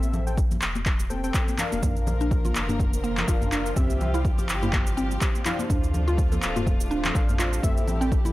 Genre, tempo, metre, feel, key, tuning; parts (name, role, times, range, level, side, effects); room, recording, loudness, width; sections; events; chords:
afro house; 124 BPM; 4/4; swing 56% on 16ths; D minor; A4 = 440 Hz
warm analog keys; stabs; 0.0-8.1 s; C4 to G5; -33 LUFS; left 2 dB; chorus, sidechain pumping, low-pass filter, analog delay
warm sub bass; bass; 0.0-8.2 s; D1 to D2; -28 LUFS; equal; sidechain pumping
deep house drum kit; drums; 0.0-8.3 s; handclaps, shaker, toms; -29 LUFS; equal
congas; percussion; 0.0-8.3 s; -33 LUFS; left 2 dB
electronic kick drum; drums; 0.4-8.2 s; -24 LUFS; equal
warm studio string section; sustained chords; 1.8-8.3 s; C3 to Bb4; -34 LUFS; left 1 dB; sidechain pumping
mallet-like synth pluck; arpeggios; 1.8-8.3 s; A3 to A4; -31 LUFS; right 1 dB; chorus, cassette tape, sidechain pumping, analog delay
digital ambience; dry, gritty hardware recording; -22 LUFS; side -17 dB against mid
0.0-8.3 A section
0.0 Am7; 1.8 Bb; 3.8 Csus4; 5.7 Dm7; 7.6 Am7